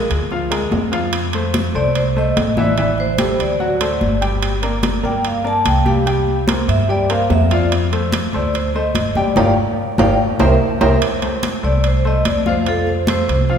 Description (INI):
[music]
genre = Afro-Cuban jazz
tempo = 146 BPM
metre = 4/4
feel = straight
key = F major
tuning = A4 = 438 Hz
[part]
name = vibraphone with medium mallets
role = melody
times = 0.0-13.6 s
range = A4 to A5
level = -20 LUFS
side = right 1 dB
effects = none
[part]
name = clear baby grand piano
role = accompaniment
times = 0.0-13.6 s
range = E3 to G5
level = -21 LUFS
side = left 1 dB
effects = none
[part]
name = upright bass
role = bass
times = 0.0-13.6 s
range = G1 to G2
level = -20 LUFS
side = equal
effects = none
[part]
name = timbales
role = percussion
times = 0.1-13.5 s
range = none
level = -24 LUFS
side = right 5 dB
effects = none
[part]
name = congas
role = percussion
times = 0.3-13.6 s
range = none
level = -22 LUFS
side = left 2 dB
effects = none
[sound]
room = wet concert hall reverb, RT60 2.3 s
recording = recorded in a church or concert hall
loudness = -14 LUFS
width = side -8 dB against mid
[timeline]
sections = 0.0-11.0 A section; 11.0-13.6 A section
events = band accent 9.4-11.0; drum fill 10.2-11.0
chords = 0.0 Bb7; 1.1 F7; 2.8 Am7; 3.6 D7; 4.4 Gm; 6.1 C5; 7.7 F; 8.5 D5; 9.4 Gm7; 10.2 C7; 11.0 F